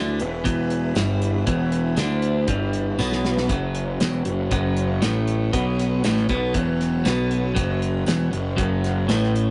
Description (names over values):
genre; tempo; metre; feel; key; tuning
psychedelic rock; 118 BPM; 4/4; straight; unclear; A4 = 442 Hz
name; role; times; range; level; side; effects
string machine, violins; sustained chords; 0.0-9.5 s; F#3 to C#5; -37 LUFS; equal; none
twelve-string electric guitar; riff; 0.0-9.5 s; E2 to D3; -25 LUFS; equal; none
fuzz picked electric bass; bass; 0.0-9.5 s; E1 to D2; -27 LUFS; equal; overdrive
damped 70s drum kit; drums; 0.2-9.5 s; hi-hat, kick drum, snare drum; -29 LUFS; equal; none
tambourine; percussion; 1.0-9.2 s; none; -44 LUFS; equal; none
room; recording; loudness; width
moderate booth ambience, RT60 0.3 s; rough rehearsal-room recording, nothing above 10.6 kHz; -22 LUFS; mono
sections
0.0-9.5 A section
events
drum fill 3.0-3.5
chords
0.0 E; 3.5 F#5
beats
0.46 0.97 | 1.48 1.98 2.49 2.99 | 3.50 4.01 4.52 5.02 | 5.53 6.04 6.55 7.06 | 7.56 8.07 8.58 9.09